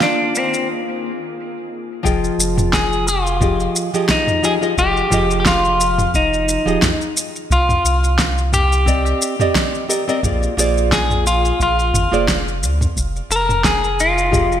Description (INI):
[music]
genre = sunset chillout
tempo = 88 BPM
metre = 4/4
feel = swing 54% on 16ths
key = F dorian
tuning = A4 = 441 Hz
[part]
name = clean electric guitar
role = melody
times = 0.0-14.6 s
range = C4 to Bb4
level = -18 LUFS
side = left 1 dB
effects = spring reverb, ping-pong delay
[part]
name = nylon-string guitar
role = accompaniment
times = 0.0-14.6 s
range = F3 to G5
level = -21 LUFS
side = moving between left 6 dB and right 5 dB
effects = auto-pan, ping-pong delay
[part]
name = shimmering ambient pad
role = sustained chords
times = 0.0-0.7 s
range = Eb3 to Ab4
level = -28 LUFS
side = right 1 dB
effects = chorus, built-in reverb
[part]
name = deep house drum kit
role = drums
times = 0.0-14.6 s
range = shaker, snare drum, toms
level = -20 LUFS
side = equal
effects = gated reverb
[part]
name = warm sub bass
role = bass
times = 2.0-14.6 s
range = Eb1 to D2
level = -20 LUFS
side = equal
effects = none
[part]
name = electronic kick drum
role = drums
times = 2.0-14.5 s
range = none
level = -22 LUFS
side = equal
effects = none
[sound]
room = moderate lush hall reverb, RT60 2.3 s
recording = bright 1980s-style digital production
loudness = -14 LUFS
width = side -10 dB against mid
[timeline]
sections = 0.0-2.1 A section; 2.1-14.6 B section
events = filter sweep on nylon-string guitar 0.0-2.1; break 0.7-2.1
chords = 0.0 Bb9; 2.1 Fm9; 7.5 Cm9; 10.2 Bb9; 13.0 Fm9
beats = 0.01 0.69 1.37 | 2.05 2.73 3.42 4.10 | 4.78 5.46 6.14 6.83 | 7.51 8.19 8.87 9.55 | 10.23 10.92 11.60 12.28 | 12.96 13.64 14.32